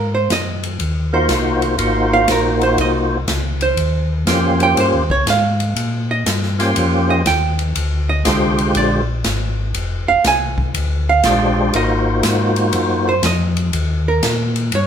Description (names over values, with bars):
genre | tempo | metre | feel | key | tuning
soul jazz organ trio | 121 BPM | 4/4 | swing 67% on 8ths | unclear | A4 = 440 Hz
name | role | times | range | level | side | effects
archtop guitar, miked and amplified | accompaniment | 0.0-14.9 s | Bb4 to Ab5 | -18 LUFS | right 5 dB | none
mellow tonewheel organ | bass | 0.0-14.9 s | F1 to Bb2 | -19 LUFS | left 1 dB | chorus vibrato, slow rotary speaker
swinging big-band drum kit | drums | 0.3-14.9 s | hi-hat, kick drum, ride cymbal, snare drum | -23 LUFS | left 1 dB | none
percussive tonewheel organ | melody | 1.1-13.1 s | D3 to C5 | -17 LUFS | equal | slow rotary speaker, overdrive, chorus vibrato
room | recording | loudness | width
moderate large studio reverb, RT60 1.2 s | band playing live in one room | -14 LUFS | side -8 dB against mid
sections
0.0-14.9 A section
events
hollow-body jazz guitar solo 0.0-14.9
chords
0.0 Ab13; 3.8 Eb13; 7.8 Bb13; 11.7 Ab13; 13.7 Eb